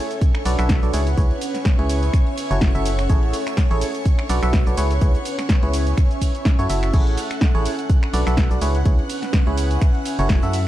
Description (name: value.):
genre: piano house.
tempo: 125 BPM.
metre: 4/4.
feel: swing 55% on 16ths.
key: F# minor.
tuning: A4 = 440 Hz.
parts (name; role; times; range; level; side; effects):
string machine, violins; sustained chords; 0.0-10.7 s; C#5 to F#6; -32 LUFS; right 1 dB; ensemble chorus, sidechain pumping.
airy breathy pad; texture; 0.0-10.7 s; C#4 to G#5; -28 LUFS; right 1 dB; chorus, sidechain pumping.
punchy analog drum machine; drums; 0.1-10.6 s; crash cymbal, finger snaps, hi-hat, ride cymbal, shaker, snare drum; -27 LUFS; equal; none.
electronic kick drum; drums; 0.2-10.4 s; none; -17 LUFS; equal; none.
barking FM electric piano; riff; 0.5-10.6 s; E4 to E5; -27 LUFS; right 1 dB; chorus, cassette tape, sidechain pumping, ping-pong delay.
organ-like FM bass; bass; 0.5-10.7 s; F#1 to F#2; -21 LUFS; equal; sidechain pumping.
room: digital ambience.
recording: dark, warm production.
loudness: -17 LUFS.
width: side -14 dB against mid.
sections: 0.0-10.7 A section.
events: none.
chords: 0.2 Bm7; 0.9 C#m7; 2.1 F#m7; 3.1 Amaj7; 4.1 Bm7; 4.8 C#m7; 6.0 F#m7; 6.9 Amaj7; 7.9 Bm7; 8.6 C#m7; 9.8 F#m7.